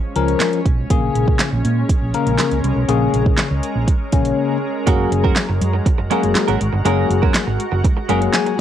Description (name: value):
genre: dance-pop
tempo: 121 BPM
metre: 4/4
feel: straight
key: F# major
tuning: A4 = 440 Hz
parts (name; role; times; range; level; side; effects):
- shimmering ambient pad; sustained chords; 0.0-8.6 s; E#3 to A#4; -25 LUFS; right 1 dB; chorus, built-in reverb, sidechain pumping, cassette tape
- bell-like tine electric piano; accompaniment; 0.2-8.6 s; C#3 to G#5; -19 LUFS; left 7 dB; phaser, sidechain pumping, cassette tape
- fingered electric bass; bass; 0.2-8.3 s; F#1 to A#2; -20 LUFS; right 1 dB; sidechain pumping
- deep house drum kit; drums; 0.2-8.6 s; handclaps, hi-hat, kick drum, snare drum; -18 LUFS; right 1 dB; cassette tape
- direct-recorded clean electric guitar; riff; 4.9-8.5 s; G#3 to A#4; -22 LUFS; right 11 dB; lush chorus, cassette tape
room: light reverb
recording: home recording on cassette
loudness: -15 LUFS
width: side -10 dB against mid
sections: 0.0-8.6 A section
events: break 4.4-4.9; tine electric piano fill 8.1-8.6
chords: 0.0 C#; 0.9 A#m7; 4.9 F#add9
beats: 0.41 | 0.90 1.40 1.90 2.39 | 2.89 3.38 3.88 4.38 | 4.87 5.37 5.86 6.36 | 6.85 7.35 7.85 8.34